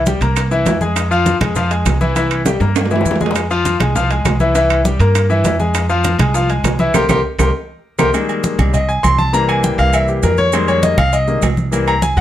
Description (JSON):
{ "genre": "latin, salsa", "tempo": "201 BPM", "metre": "4/4", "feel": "straight", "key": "F minor", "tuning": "A4 = 440 Hz", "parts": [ { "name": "upright bass", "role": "bass", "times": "0.0-12.2 s", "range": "C2 to G2", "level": "-17 LUFS", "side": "right 1 dB", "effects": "none" }, { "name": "bright concert grand piano", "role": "accompaniment", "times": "0.1-12.2 s", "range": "Eb3 to C6", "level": "-16 LUFS", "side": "left 2 dB", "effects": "none" }, { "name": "bongos", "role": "percussion", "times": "0.1-8.1 s", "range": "none", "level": "-26 LUFS", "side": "left 4 dB", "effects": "none" }, { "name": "congas", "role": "percussion", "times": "0.1-12.2 s", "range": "none", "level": "-21 LUFS", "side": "left 1 dB", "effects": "none" }, { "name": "maracas", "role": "percussion", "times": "0.1-12.2 s", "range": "none", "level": "-31 LUFS", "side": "right 7 dB", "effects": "none" }, { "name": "timbales and agogo bells", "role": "percussion", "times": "0.1-12.2 s", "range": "none", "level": "-23 LUFS", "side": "right 7 dB", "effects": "none" }, { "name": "claves", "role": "percussion", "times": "0.4-12.0 s", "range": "none", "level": "-27 LUFS", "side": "right 9 dB", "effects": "none" } ], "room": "light reverb", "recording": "none", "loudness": "-13 LUFS", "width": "side -12 dB against mid", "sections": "0.0-8.1 A section; 8.1-12.2 B section", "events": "drum fill 2.5-3.4, 7.7-8.1; band accent 6.9-8.1; grand piano solo 8.1-12.2", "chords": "0.0 C7; 1.0 Fm; 2.2 C7; 3.4 Fm; 4.6 C7; 5.7 Fm; 6.9 C5; 8.1 Abmaj9; 9.3 C7; 10.5 Fm11", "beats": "0.06 0.36 0.66 | 0.96 1.26 1.56 1.86 | 2.16 2.46 2.76 3.06 | 3.35 3.65 3.95 4.25 | 4.55 4.85 5.15 5.45 | 5.75 6.05 6.34 6.64 | 6.94 7.24 7.54 7.84 | 8.14 8.44 8.74 9.04 | 9.34 9.63 9.93 10.23 | 10.53 10.83 11.13 11.43 | 11.72 12.02" }